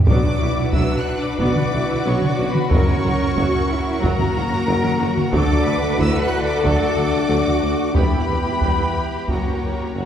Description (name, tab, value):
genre	cinematic, epic orchestral film score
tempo	92 BPM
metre	4/4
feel	straight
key	B minor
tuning	A4 = 442 Hz
part	warm symphonic violin section	melody	0.1-10.1 s	A#5 to F#6	-28 LUFS	left 2 dB	none
part	silver concert flute	second line	0.1-10.1 s	A#4 to F#5	-29 LUFS	left 1 dB	none
part	warm symphonic violin section	second line	0.1-10.1 s	F#4 to C#5	-28 LUFS	left 2 dB	none
part	warm symphonic viola section	accompaniment	0.1-10.1 s	F#3 to F#4	-28 LUFS	equal	none
part	mellow French horn section	sustained chords	0.1-10.1 s	A#3 to F#4	-25 LUFS	left 2 dB	none
part	mellow woodwind section	sustained chords	0.1-10.1 s	A3 to G5	-30 LUFS	equal	none
part	dark symphonic cello section	bass	0.1-10.1 s	D4 to B4	-27 LUFS	right 2 dB	none
part	mellow tuba	bass	0.1-10.0 s	E1 to D2	-27 LUFS	right 2 dB	none
part	warm studio double bass section	bass	0.1-10.0 s	B1 to F#2	-26 LUFS	right 2 dB	none
part	taiko ensemble	drums	0.1-9.9 s	none	-22 LUFS	equal	none
part	timpani	percussion	2.7-3.7 s	F#2	-26 LUFS	equal	none
room	wet scoring stage reverb, RT60 1.9 s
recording	heard from further back in the room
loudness	-17 LUFS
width	side -9 dB against mid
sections	0.0-10.1 A section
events	none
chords	0.1 Bmadd9; 2.7 F#; 5.3 D; 7.9 Em; 9.3 F#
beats	| 0.08 0.74 1.40 2.06 | 2.71 3.36 4.02 4.67 | 5.33 5.98 6.64 7.29 | 7.95 8.61 9.28 9.95